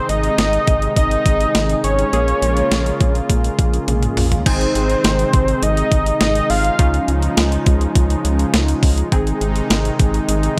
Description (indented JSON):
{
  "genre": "synth-pop",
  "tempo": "103 BPM",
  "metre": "4/4",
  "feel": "straight",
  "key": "Ab major",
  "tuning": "A4 = 440 Hz",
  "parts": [
    { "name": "fat analog lead", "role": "melody", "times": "0.0-7.1 s", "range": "C5 to F5", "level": "-21 LUFS", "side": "equal", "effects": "chorus, digital delay" },
    { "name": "funky polysynth comp", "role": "accompaniment", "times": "0.0-10.6 s", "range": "Bb3 to Ab4", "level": "-27 LUFS", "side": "equal", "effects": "chorus" },
    { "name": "brassy analog pad", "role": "sustained chords", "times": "0.0-10.6 s", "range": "C3 to F4", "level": "-27 LUFS", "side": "equal", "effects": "chorus" },
    { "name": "rubbery square bass", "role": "bass", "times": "0.1-10.5 s", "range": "Ab1 to Db2", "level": "-22 LUFS", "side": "equal", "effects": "none" },
    { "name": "clean 12-bit digital drum machine", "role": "drums", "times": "0.1-10.6 s", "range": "crash cymbal, hi-hat, kick drum, snare drum, toms", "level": "-20 LUFS", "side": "equal", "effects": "none" }
  ],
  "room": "little or no reverb",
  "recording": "none",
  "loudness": "-17 LUFS",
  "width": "mono",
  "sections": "0.0-4.5 A section; 4.5-10.6 B section",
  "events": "drum fill 3.9-4.5",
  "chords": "0.0 Ab; 2.1 Bbm7; 4.5 Ab; 6.8 Dbadd9; 9.1 Ab",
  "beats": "0.38 0.97 1.55 | 2.13 2.71 3.30 3.88 | 4.46 5.04 5.63 6.21 | 6.79 7.37 7.96 8.54 | 9.12 9.70 10.29"
}